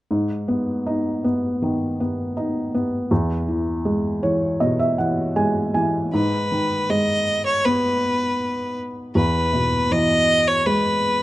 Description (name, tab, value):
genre	children's music, lullaby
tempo	80 BPM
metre	4/4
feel	rubato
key	G# minor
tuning	A4 = 440 Hz
part	felt-muted upright piano	accompaniment	0.1-11.2 s	E2 to G#5	-20 LUFS	equal	none
part	clear fiddle	melody	6.1-11.2 s	B4 to D#5	-20 LUFS	equal	none
room	light reverb, small room ambience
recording	rough home demo mix, nothing above 10.5 kHz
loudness	-19 LUFS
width	side -16 dB against mid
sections	0.1-6.1 A section; 6.1-11.2 B section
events	felt piano fill 3.8-6.1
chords	0.1 G#m; 3.1 E; 6.1 G#m; 9.2 E